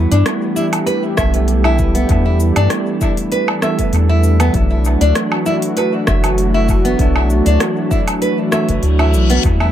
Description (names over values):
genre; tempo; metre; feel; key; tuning
organic downtempo; 98 BPM; 4/4; swing 54% on 16ths; unclear; A4 = 440 Hz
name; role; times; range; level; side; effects
bell-like tine electric piano; accompaniment; 0.0-9.7 s; F#3 to A4; -21 LUFS; moving between left 3 dB and right 5 dB; auto-pan, sidechain pumping, dub echo
warm analog pad; sustained chords; 0.0-9.7 s; E3 to G4; -21 LUFS; equal; chorus, sidechain pumping
round analog bass; bass; 0.0-9.7 s; F#1 to G2; -14 LUFS; equal; sidechain pumping
nylon-string guitar; arpeggios; 0.1-9.7 s; B3 to E5; -20 LUFS; equal; dub echo
organic electronic drum kit; drums; 0.1-9.7 s; hi-hat, rim click, shaker, woodblock; -23 LUFS; right 1 dB; overdrive, dub echo
electronic kick drum; drums; 1.2-9.6 s; none; -19 LUFS; equal; none
reverse cymbal; sound effects; 8.9-9.4 s; none; -25 LUFS; left 8 dB; none
room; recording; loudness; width
light reverb; echo-heavy mix; -12 LUFS; side -11 dB against mid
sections
0.0-9.7 A section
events
reverse cymbal 8.9-9.4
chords
0.0 Em; 4.5 Bm7